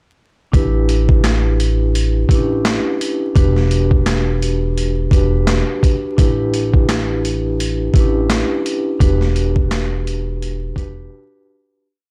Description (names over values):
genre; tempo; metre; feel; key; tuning
hip hop, boom-bap hip-hop; 85 BPM; 4/4; swing 58% on 16ths; E minor; A4 = 440 Hz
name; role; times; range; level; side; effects
vibraphone with soft mallets; accompaniment; 0.5-11.8 s; C#4 to B4; -22 LUFS; equal; cassette tape, high-pass filter, low-pass filter
upright bass; bass; 0.5-11.1 s; E1 to A1; -20 LUFS; equal; transformer saturation
boom bap sampler-style drum kit; drums; 0.5-11.0 s; handclaps, hi-hat, kick drum, snare drum; -19 LUFS; equal; none
room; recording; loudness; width
small room ambience; dry, gritty hardware recording, vinyl crackle; -16 LUFS; mono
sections
0.5-11.8 verse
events
fade-out 9.0-11.8; break 11.1-11.8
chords
0.5 A9sus4; 3.4 Em9; 6.2 A9sus4; 9.0 Em9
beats
| 0.53 1.24 1.94 2.65 | 3.36 4.06 4.77 5.47 | 6.18 6.89 7.59 8.30 | 9.00 9.71 10.41 11.12